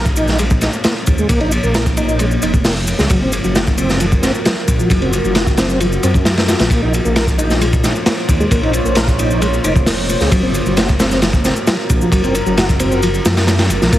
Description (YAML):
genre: breakbeat, breaks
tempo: 133 BPM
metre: 4/4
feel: straight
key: unclear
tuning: A4 = 441 Hz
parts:
  - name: deep dark ambient pad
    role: sustained chords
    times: 0.0-14.0 s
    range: Bb3 to Db5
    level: -22 LUFS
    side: left 1 dB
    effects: chorus, built-in reverb, sidechain pumping
  - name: tonewheel organ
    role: riff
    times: 0.0-14.0 s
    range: F3 to Bb4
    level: -20 LUFS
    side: equal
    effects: chorus vibrato, slow rotary speaker, low-pass filter, dub echo
  - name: dark detuned saw bass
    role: bass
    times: 0.0-14.0 s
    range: F1 to Gb2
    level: -18 LUFS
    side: equal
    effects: none
  - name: crunchy breakbeat drum kit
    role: drums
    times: 0.1-14.0 s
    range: hi-hat, kick drum, ride cymbal, snare drum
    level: -16 LUFS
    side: equal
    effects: none
  - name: shaker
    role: drums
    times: 0.1-14.0 s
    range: none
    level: -29 LUFS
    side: left 2 dB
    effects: overdrive
room: light reverb, studio ambience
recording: heavily compressed radio sound, vinyl crackle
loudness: -12 LUFS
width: side -14 dB against mid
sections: 0.0-14.0 A section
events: filter sweep on tonewheel organ 0.0-14.0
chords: 0.0 Bbmadd9; 3.1 Gbmaj7; 6.7 Bbmadd9; 10.3 Gbmaj7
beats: 0.39 0.84 | 1.30 1.75 2.20 2.65 | 3.10 3.55 4.00 4.45 | 4.91 5.36 5.81 6.26 | 6.71 7.16 7.61 8.06 | 8.51 8.96 9.42 9.87 | 10.32 10.77 11.22 11.67 | 12.12 12.57 13.03 13.48 | 13.93